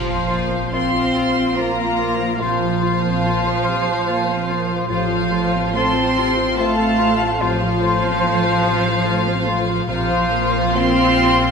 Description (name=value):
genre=cinematic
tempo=72 BPM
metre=3/4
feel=rubato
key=unclear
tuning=A4 = 439 Hz
part: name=warm studio violin section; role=melody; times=0.0-11.5 s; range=F5 to C6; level=-25 LUFS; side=left 1 dB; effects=none
part: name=concert flute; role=second line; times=0.0-11.5 s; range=C5 to A5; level=-25 LUFS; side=equal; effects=none
part: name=rich symphonic violin section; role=second line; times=0.0-11.5 s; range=F4 to C5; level=-26 LUFS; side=left 1 dB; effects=none
part: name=dark studio viola section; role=accompaniment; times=0.0-11.5 s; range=C3 to F4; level=-26 LUFS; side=right 2 dB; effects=none
part: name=mellow French horn section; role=sustained chords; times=0.0-11.5 s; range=F3 to C4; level=-23 LUFS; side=left 2 dB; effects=none
part: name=concert harp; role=arpeggios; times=0.0-11.5 s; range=A2 to C6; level=-28 LUFS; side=left 4 dB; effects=none
part: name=rich symphonic double bass section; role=bass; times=0.0-11.5 s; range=A1 to Bb1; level=-27 LUFS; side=right 4 dB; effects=none
part: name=warm chamber cello section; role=bass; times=0.0-11.5 s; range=F3 to C4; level=-24 LUFS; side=right 2 dB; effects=none
part: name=bright clarinet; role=second line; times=0.3-11.5 s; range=F4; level=-29 LUFS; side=left 2 dB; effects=none
part: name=dark cor anglais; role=second line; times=0.3-11.5 s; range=C5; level=-30 LUFS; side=left 1 dB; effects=none
room=wet scoring stage reverb, RT60 2.1 s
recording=minimal, uncompressed stereo recording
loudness=-16 LUFS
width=side -5 dB against mid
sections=0.0-11.5 A section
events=none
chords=0.0 Bbsus2; 4.9 F/A; 9.9 Bbsus2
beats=0.73 1.57 | 2.40 3.23 4.06 | 4.88 5.75 6.58 | 7.40 8.22 9.04 | 9.88 10.75